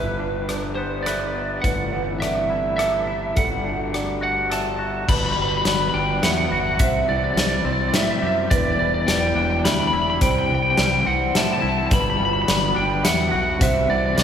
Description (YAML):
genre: post-rock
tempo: 105 BPM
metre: 3/4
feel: straight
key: G major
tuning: A4 = 440 Hz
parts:
  - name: lightly driven lead guitar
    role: melody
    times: 0.0-14.2 s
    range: B4 to B5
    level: -22 LUFS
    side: equal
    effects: none
  - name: warbly tape-like pad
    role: sustained chords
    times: 0.0-14.2 s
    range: G3 to D5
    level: -32 LUFS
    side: left 1 dB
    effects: chorus, built-in reverb
  - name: felt-muted upright piano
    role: arpeggios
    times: 0.0-14.2 s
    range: A4 to E5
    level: -30 LUFS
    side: right 3 dB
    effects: none
  - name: twangy electric guitar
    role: arpeggios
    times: 0.0-14.2 s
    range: E2 to B4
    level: -29 LUFS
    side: left 2 dB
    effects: tremolo
  - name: fuzz fingered electric bass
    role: bass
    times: 0.0-14.2 s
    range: E1 to A2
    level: -26 LUFS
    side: equal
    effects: overdrive
  - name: big rock drum kit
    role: drums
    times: 0.5-14.2 s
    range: crash cymbal, hi-hat, kick drum, rim click, snare drum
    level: -24 LUFS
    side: equal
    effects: none
room: wet church reverb, RT60 3.4 s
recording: recorded in a church or concert hall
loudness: -18 LUFS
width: side -8 dB against mid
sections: 0.0-5.1 A section; 5.1-14.2 B section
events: none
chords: 0.0 Em7/G; 1.6 Amadd9/G; 3.4 D/G; 5.1 Gmaj7; 6.8 C; 8.5 Em7; 10.2 C; 11.9 Gmaj7; 13.6 C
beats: 0.48 1.06 | 1.64 2.21 2.79 | 3.36 3.94 4.51 | 5.08 5.66 6.23 | 6.80 7.37 7.94 | 8.51 9.08 9.65 | 10.22 10.79 11.35 | 11.92 12.48 13.05 | 13.62 14.18